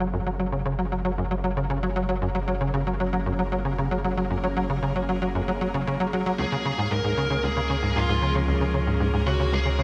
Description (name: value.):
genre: ambient, sequencer-driven space music.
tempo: 115 BPM.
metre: 4/4.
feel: straight.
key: Gb major.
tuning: A4 = 442 Hz.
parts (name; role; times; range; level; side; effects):
evolving wavetable pad; sustained chords; 0.0-9.8 s; F3 to Db5; -35 LUFS; equal; phaser, built-in reverb.
tight sequencer bass; riff; 0.0-9.8 s; Db2 to Gb3; -28 LUFS; equal; ensemble chorus, tape echo.
warm sub bass; bass; 0.0-9.8 s; Gb1 to Db2; -32 LUFS; equal; none.
bubbling stepped-filter texture; texture; 0.0-9.8 s; Bb3 to Bb4; -42 LUFS; equal; chorus, built-in reverb.
high-gain lead guitar; melody; 6.4-9.8 s; F4 to Bb4; -30 LUFS; equal; distortion, tape echo.
room: moderate huge ambient reverb, RT60 7.8 s.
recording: none.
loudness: -25 LUFS.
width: mono.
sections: 0.0-9.8 A section.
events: fade-in on ambient pad 0.0-9.8; fade-in on synth texture 0.0-9.8.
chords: 0.0 Gbadd9; 6.4 Db.